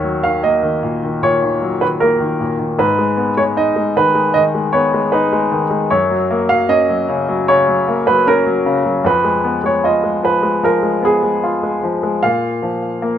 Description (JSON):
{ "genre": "pop", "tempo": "76 BPM", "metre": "4/4", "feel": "straight", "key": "Eb minor", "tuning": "A4 = 440 Hz", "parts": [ { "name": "clear baby grand piano", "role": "melody", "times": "0.0-13.2 s", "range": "Ab4 to F5", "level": "-16 LUFS", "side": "right 2 dB", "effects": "plate reverb" }, { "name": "bright concert grand piano", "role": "accompaniment", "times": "0.0-13.2 s", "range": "Eb2 to F4", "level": "-17 LUFS", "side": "left 3 dB", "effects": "plate reverb" } ], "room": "moderate studio reverb, RT60 0.6 s", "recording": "rough home demo mix", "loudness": "-13 LUFS", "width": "side -9 dB against mid", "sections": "0.0-12.2 A section", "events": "none", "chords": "0.0 Ebm; 2.8 Abm; 5.9 Ebm7/Gb; 9.0 Fdim; 12.2 Bb5" }